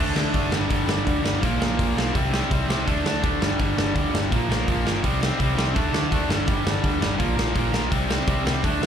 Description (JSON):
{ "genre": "punk rock", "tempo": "166 BPM", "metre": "4/4", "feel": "straight", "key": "unclear", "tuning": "A4 = 440 Hz", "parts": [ { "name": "crunchy overdriven guitar", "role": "riff", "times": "0.0-8.9 s", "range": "G2 to D4", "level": "-26 LUFS", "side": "right 6 dB", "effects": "slapback echo" }, { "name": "tight distorted guitar", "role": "riff", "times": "0.0-8.9 s", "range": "G2 to D4", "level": "-28 LUFS", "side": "left 14 dB", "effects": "distortion, slapback echo" }, { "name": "overdriven picked electric bass", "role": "bass", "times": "0.0-8.9 s", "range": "F#1 to D2", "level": "-27 LUFS", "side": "equal", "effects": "none" }, { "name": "big rock drum kit", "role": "drums", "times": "0.2-8.9 s", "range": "hi-hat, kick drum, snare drum", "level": "-25 LUFS", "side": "equal", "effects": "none" } ], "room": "little or no reverb", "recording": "live gig heard through the venue's PA, club reverb", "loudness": "-20 LUFS", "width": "side -8 dB against mid", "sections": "0.0-8.9 A section", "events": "none", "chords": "0.0 D5; 0.5 G5; 1.4 Bb5; 2.1 C5; 2.9 D5; 3.4 G5; 4.3 Bb5; 5.0 C5; 5.8 D5; 6.3 G5; 7.2 Bb5; 7.9 C5" }